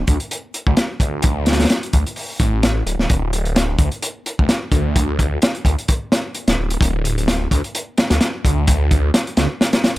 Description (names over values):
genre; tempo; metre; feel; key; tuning
breakbeat, breaks; 129 BPM; 4/4; swing 54% on 16ths; unclear; A4 = 438 Hz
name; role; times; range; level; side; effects
phased detuned saw bass; bass; 0.0-9.5 s; D1 to D2; -19 LUFS; equal; phaser
crunchy breakbeat drum kit; drums; 0.1-10.0 s; hi-hat, kick drum, snare drum; -17 LUFS; equal; none
room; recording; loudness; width
little or no reverb; none; -16 LUFS; side -17 dB against mid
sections
0.0-10.0 A section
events
none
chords
none